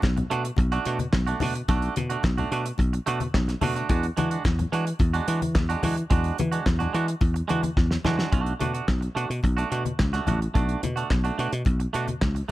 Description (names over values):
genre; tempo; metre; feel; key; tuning
disco; 108 BPM; 4/4; straight; B dorian; A4 = 440 Hz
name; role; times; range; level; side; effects
twangy electric guitar; accompaniment; 0.0-12.5 s; G#3 to F#4; -30 LUFS; right 6 dB; none
dry thumbed slap bass; bass; 0.0-12.4 s; A1 to E3; -26 LUFS; equal; none
damped 70s drum kit; drums; 0.0-12.5 s; handclaps, hi-hat, kick drum, snare drum; -26 LUFS; equal; none
congas; percussion; 0.0-12.5 s; none; -32 LUFS; left 4 dB; none
room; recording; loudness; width
small room ambience; dark, warm production; -22 LUFS; side -16 dB against mid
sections
0.0-8.3 A section; 8.3-12.5 B section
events
drum fill 7.8-8.3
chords
0.0 Bm7; 3.9 E9; 8.3 Bm7